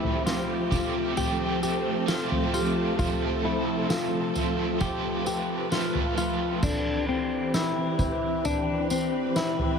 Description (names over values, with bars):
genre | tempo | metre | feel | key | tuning
dream pop | 66 BPM | 4/4 | straight | F lydian | A4 = 438 Hz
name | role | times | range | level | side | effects
overdriven electric guitar | accompaniment | 0.0-7.1 s | F2 to G4 | -33 LUFS | right 4 dB | tremolo, wide subtle chorus
soft string machine | sustained chords | 0.0-9.8 s | E3 to B4 | -29 LUFS | right 1 dB | ensemble chorus
clean electric guitar | arpeggios | 0.0-9.8 s | C4 to G4 | -29 LUFS | left 4 dB | analog chorus, ping-pong delay
soft-mallet drum kit | drums | 0.0-9.8 s | crash cymbal, kick drum, snare drum, tambourine, toms | -30 LUFS | right 1 dB | none
celesta | texture | 2.5-9.2 s | G4 to A4 | -41 LUFS | right 1 dB | none
room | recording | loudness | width
light reverb, studio ambience | none | -24 LUFS | side -6 dB against mid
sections
0.0-6.6 A section; 6.6-9.8 A section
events
none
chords
0.0 Fadd9; 6.6 Cmaj7